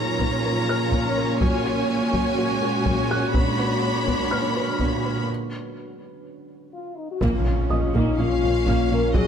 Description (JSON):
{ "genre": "cinematic, hybrid orchestral and electronic film score", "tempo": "124 BPM", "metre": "4/4", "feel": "straight", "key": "Bb phrygian", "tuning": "A4 = 440 Hz", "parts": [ { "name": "rich symphonic violin section", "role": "second line", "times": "0.0-5.2, 8.2-9.3 s", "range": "Db5 to B5", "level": "-28 LUFS", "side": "left 3 dB", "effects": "none" }, { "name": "warm symphonic viola section", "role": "accompaniment", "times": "0.0-9.3 s", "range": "F3 to Gb4", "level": "-28 LUFS", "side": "right 2 dB", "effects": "none" }, { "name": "deep dark ambient pad", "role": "sustained chords", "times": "0.0-9.3 s", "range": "Ab3 to Db5", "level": "-29 LUFS", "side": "right 1 dB", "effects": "chorus, built-in reverb" }, { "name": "dark symphonic cello section", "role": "bass", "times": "0.0-9.2 s", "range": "Bb2", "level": "-27 LUFS", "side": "right 2 dB", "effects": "none" }, { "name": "soft round pluck", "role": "arpeggios", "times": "0.2-9.3 s", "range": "Gb3 to B4", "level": "-32 LUFS", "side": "left 3 dB", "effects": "chorus, tape echo" }, { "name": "taiko ensemble", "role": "drums", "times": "0.2-9.3 s", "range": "none", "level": "-26 LUFS", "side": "equal", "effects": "none" }, { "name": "felt-muted upright piano", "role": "texture", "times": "0.7-9.2 s", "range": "Eb5 to Gb6", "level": "-35 LUFS", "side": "equal", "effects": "tape echo" }, { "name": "mellow French horn section", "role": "sustained chords", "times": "6.7-9.3 s", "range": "Eb4 to Bb4", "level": "-25 LUFS", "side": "left 5 dB", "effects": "none" }, { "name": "rich symphonic double bass section", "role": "bass", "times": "7.2-9.2 s", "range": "Bb1", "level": "-27 LUFS", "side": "right 2 dB", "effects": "none" }, { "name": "sub bass with octave", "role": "bass", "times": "7.2-9.3 s", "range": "Bb1", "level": "-26 LUFS", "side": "equal", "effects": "none" }, { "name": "impact", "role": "sound effects", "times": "7.2-9.2 s", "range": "none", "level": "-30 LUFS", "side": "equal", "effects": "none" } ], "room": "light reverb", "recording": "close, detailed microphones", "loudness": "-20 LUFS", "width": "side -8 dB against mid", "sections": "0.0-7.2 A section; 7.2-9.3 B section", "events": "break 5.3-7.2; drum fill 6.5-7.2; impact 7.2-9.2", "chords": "0.0 Bbm; 1.4 Gbadd9; 3.4 Bmadd9/Bb; 5.3 N.C.; 7.2 Bbm", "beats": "0.45 0.93 | 1.42 1.90 2.38 2.87 | 3.35 3.83 4.32 4.80 | 5.29 5.77 6.25 6.74 | 7.22 7.71 8.19 8.67 | 9.16" }